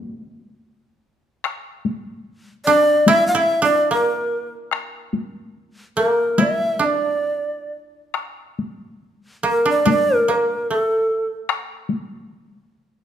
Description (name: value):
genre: japanese traditional, Japanese chamber music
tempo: 72 BPM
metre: 4/4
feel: uneven beats, rubato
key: unclear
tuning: A4 = 443 Hz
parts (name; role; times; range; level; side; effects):
- koto; second line; 0.0-13.0 s; A3 to E4; -20 LUFS; right 4 dB; none
- taiko ensemble; percussion; 1.4-12.1 s; none; -22 LUFS; left 3 dB; none
- bright long shakuhachi; melody; 2.7-11.3 s; A4 to F5; -18 LUFS; equal; none
room: moderate recital hall reverb, RT60 1.5 s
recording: minimal, uncompressed stereo recording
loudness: -17 LUFS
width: side -9 dB against mid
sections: 0.0-8.2 A section; 8.2-13.0 B section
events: none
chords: none